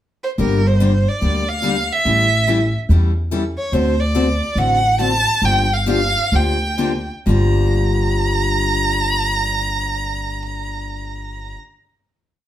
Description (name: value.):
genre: acoustic string swing (jazz manouche).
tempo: 122-144 BPM.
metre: 4/4.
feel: swing 62% on 8ths.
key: G minor.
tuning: A4 = 441 Hz.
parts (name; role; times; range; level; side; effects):
warm violin; melody; 0.2-11.5 s; Bb4 to Bb5; -19 LUFS; right 2 dB; none.
picked steel-string acoustic guitar; accompaniment; 0.4-11.6 s; G2 to A4; -22 LUFS; left 4 dB; none.
upright bass; bass; 0.4-11.5 s; G1 to E2; -19 LUFS; equal; none.
room: wet studio reverb, RT60 0.7 s.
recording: band playing live in one room.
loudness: -15 LUFS.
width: side -12 dB against mid.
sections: 0.0-0.4 pickup bar; 0.4-7.3 A section; 7.3-11.2 final chord.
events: slowing down 3.7-7.3.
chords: 0.4 Gm; 2.1 A7; 3.7 D7; 5.4 Gm7.